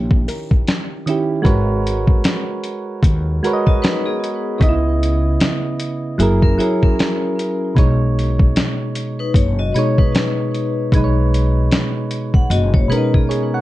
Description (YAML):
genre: lo-fi hip hop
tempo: 76 BPM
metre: 4/4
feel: swing 61% on 16ths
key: B major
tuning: A4 = 440 Hz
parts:
  - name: buzzing kalimba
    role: melody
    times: 0.0-0.6 s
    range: A#4 to C#5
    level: -36 LUFS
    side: left 3 dB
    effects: tape echo
  - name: soft electric-piano-like synth keys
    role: accompaniment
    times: 0.0-13.6 s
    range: B2 to F#5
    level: -19 LUFS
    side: right 2 dB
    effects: chorus, cassette tape
  - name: upright bass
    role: bass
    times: 0.0-12.9 s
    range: F#1 to D#2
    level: -18 LUFS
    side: equal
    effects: none
  - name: dusty soul sampler-style drum kit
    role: drums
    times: 0.1-13.5 s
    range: hi-hat, kick drum, snare drum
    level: -16 LUFS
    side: equal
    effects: none
  - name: vibraphone with hard mallets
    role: second line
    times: 3.7-13.6 s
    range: B3 to F#5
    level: -24 LUFS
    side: left 6 dB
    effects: tape echo
room: light reverb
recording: cassette tape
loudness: -15 LUFS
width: side -16 dB against mid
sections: 0.0-13.6 A section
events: drum fill 13.3-13.6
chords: 0.0 D#7b9; 1.4 G#m11; 4.6 C#m9; 6.2 F#9; 7.8 B69